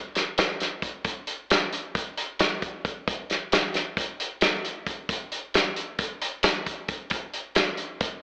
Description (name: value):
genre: rock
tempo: 267 BPM (eighths)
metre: 9/8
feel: straight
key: none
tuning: none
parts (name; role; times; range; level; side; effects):
- loose indie drum kit; drums; 0.2-8.1 s; hi-hat, kick drum, snare drum; -24 LUFS; equal; cassette tape
room: moderate lush hall reverb, RT60 1.7 s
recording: home recording on cassette, AM radio sound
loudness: -24 LUFS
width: side -40 dB against mid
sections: 0.0-8.2 A section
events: none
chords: none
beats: 0.14 0.37 0.59 0.82 | 1.04 1.27 1.50 1.72 1.95 2.17 2.40 2.62 2.85 | 3.07 3.30 3.52 3.75 3.97 4.20 4.42 4.64 4.87 | 5.09 5.32 5.54 5.77 5.99 6.22 6.44 6.67 6.89 | 7.12 7.34 7.56 7.79 8.01